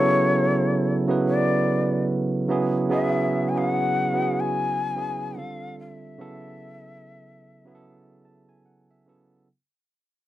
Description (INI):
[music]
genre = R&B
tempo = 73 BPM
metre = 4/4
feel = swing 58% on 16ths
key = unclear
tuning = A4 = 440 Hz
[part]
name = breathy shakuhachi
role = melody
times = 0.0-8.6 s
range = C#5 to G#5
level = -25 LUFS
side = left 4 dB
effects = slapback echo
[part]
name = barky tine electric piano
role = accompaniment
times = 0.0-9.5 s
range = C#3 to A5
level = -23 LUFS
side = right 2 dB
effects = none
[sound]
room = moderate booth ambience, RT60 0.3 s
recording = dry, close 1970s-style studio recording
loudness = -21 LUFS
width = side -14 dB against mid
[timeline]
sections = 0.0-9.5 A section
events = fade-out 0.0-9.5; tine electric piano fill 7.8-9.5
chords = 0.0 Bm11; 2.9 C#m7; 5.4 Gsus2; 6.2 F#m9